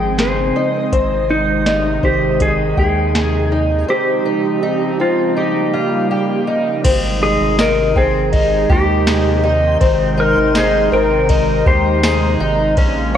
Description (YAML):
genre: dream pop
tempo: 81 BPM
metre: 4/4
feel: straight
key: Ab major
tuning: A4 = 439 Hz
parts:
  - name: clean lap steel guitar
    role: melody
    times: 0.0-13.2 s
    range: Eb4 to C5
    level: -19 LUFS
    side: equal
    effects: digital delay, shimmer reverb
  - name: hollow soft pad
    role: sustained chords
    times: 0.0-13.2 s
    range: C3 to F4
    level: -20 LUFS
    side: right 2 dB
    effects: chorus, shimmer reverb
  - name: fingerpicked twelve-string acoustic guitar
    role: arpeggios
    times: 0.0-13.2 s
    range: Ab3 to G5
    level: -18 LUFS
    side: left 1 dB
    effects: wide subtle chorus, digital delay, shimmer reverb
  - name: round analog bass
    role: bass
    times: 0.0-13.2 s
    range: Ab1 to Eb2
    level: -20 LUFS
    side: equal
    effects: none
  - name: backwards swelling texture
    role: texture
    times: 0.0-1.3, 8.5-13.2 s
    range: C5 to F5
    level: -30 LUFS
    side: right 2 dB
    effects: built-in reverb, digital delay, shimmer reverb
  - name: soft vintage rhythm box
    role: drums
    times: 0.2-12.9 s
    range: crash cymbal, hi-hat, kick drum, ride cymbal, snare drum, tambourine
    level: -18 LUFS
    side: equal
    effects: overdrive
room: moderate plate reverb, RT60 2.2 s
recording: worn, warbling old tape, cassette tape, warbly pitch drift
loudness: -13 LUFS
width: side -9 dB against mid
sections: 0.0-6.8 A section; 6.8-13.2 B section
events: none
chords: 0.0 Dbmaj9; 0.9 Abmaj7; 3.9 Dbmaj9; 5.4 Eb9; 6.8 Abmaj7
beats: 0.18 | 0.92 1.66 2.40 3.14 | 3.88 4.62 5.37 6.11 | 6.85 7.59 8.33 9.07 | 9.81 10.55 11.29 12.03 | 12.77